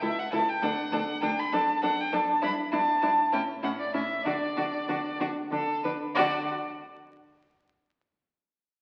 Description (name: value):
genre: quick classical-period movement for string quartet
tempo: 65 BPM (dotted quarters)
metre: 6/8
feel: uneven beats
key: D major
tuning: A4 = 445 Hz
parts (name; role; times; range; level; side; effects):
- rich violin; melody; 0.0-6.5 s; D5 to B5; -30 LUFS; equal; none
- rich violin; second line; 0.0-6.5 s; E4 to B4; -35 LUFS; equal; none
- rich viola; accompaniment; 0.0-6.5 s; C#4 to E4; -35 LUFS; equal; none
- rich cello; bass; 0.0-6.5 s; C#2 to D3; -41 LUFS; equal; none
room: wet recital hall reverb, RT60 1.4 s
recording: very old 78 rpm record, vinyl crackle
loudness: -28 LUFS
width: mono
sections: 0.0-6.2 A section; 6.2-8.0 B section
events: none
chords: 0.0 A/C#; 0.6 D; 2.4 Em7/G (rootless); 3.3 A; 4.3 N.C.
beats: | 0.62 1.52 | 2.42 3.32 | 4.25 5.20 | 6.16